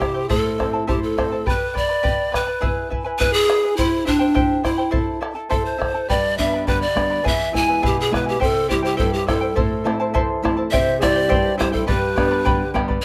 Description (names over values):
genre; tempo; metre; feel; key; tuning
andean folk, Andean ensemble; 104 BPM; 2/4; straight; A minor; A4 = 439 Hz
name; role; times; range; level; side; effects
breathy pan flute; melody; 0.0-13.0 s; D4 to G#5; -23 LUFS; equal; plate reverb
charango; accompaniment; 0.0-13.0 s; E4 to B5; -27 LUFS; equal; none
nylon-string guitar; accompaniment; 0.0-1.5, 6.1-13.0 s; E2 to E4; -27 LUFS; equal; none
bombo; percussion; 0.0-13.0 s; none; -27 LUFS; equal; none
mellow large quena; second line; 10.7-12.7 s; E4 to D5; -27 LUFS; equal; none
room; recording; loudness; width
light reverb; close, detailed microphones; -20 LUFS; mono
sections
0.0-1.5 A section; 1.5-10.7 A section; 10.7-13.0 B section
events
none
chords
0.3 Am; 1.5 G; 2.6 E; 3.8 C; 4.9 Am; 6.1 G; 7.3 E; 8.4 C; 9.6 Am; 10.7 C; 11.9 G